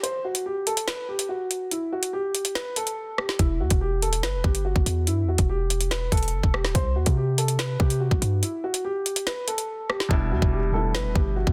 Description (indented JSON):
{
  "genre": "hip hop, drill",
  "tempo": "143 BPM",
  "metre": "4/4",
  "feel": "half-time",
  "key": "E minor",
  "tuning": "A4 = 440 Hz",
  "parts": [
    { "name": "dark grand piano", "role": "melody", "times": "0.0-11.5 s", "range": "E4 to C5", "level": "-31 LUFS", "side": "equal", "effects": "low-pass filter" },
    { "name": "drill drum kit", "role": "drums", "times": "0.0-11.5 s", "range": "hi-hat, kick drum, rim click, snare drum", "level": "-27 LUFS", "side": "equal", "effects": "soft clipping on snare" },
    { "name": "hard-hitting 808-style bass", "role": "bass", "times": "3.4-11.5 s", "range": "D1 to C3", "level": "-27 LUFS", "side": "equal", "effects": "none" },
    { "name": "felt-muted upright piano", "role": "accompaniment", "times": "10.1-11.5 s", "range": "B2 to E4", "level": "-31 LUFS", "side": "equal", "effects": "low-pass filter" }
  ],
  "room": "digital ambience",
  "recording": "dense, heavily limited modern master",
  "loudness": "-25 LUFS",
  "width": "mono",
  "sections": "0.0-11.5 A section",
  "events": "break 0.0-3.4, 8.4-10.1; hi-hats muted 10.1-11.5",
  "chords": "0.0 N.C.; 3.4 Em; 6.8 C5; 10.1 Em7"
}